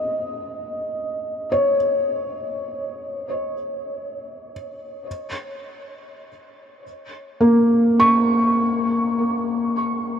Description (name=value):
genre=ambient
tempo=free time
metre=none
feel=none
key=unclear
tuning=A4 = 440 Hz
part: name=felt-muted upright piano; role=solo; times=0.0-10.2 s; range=Bb3 to Db6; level=-20 LUFS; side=equal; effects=diffuse ambient delay
room=wet huge ambient reverb, RT60 9.7 s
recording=cassette tape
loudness=-18 LUFS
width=side -9 dB against mid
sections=0.0-10.2 A section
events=none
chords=0.0 Dbsus2; 5.1 Bbm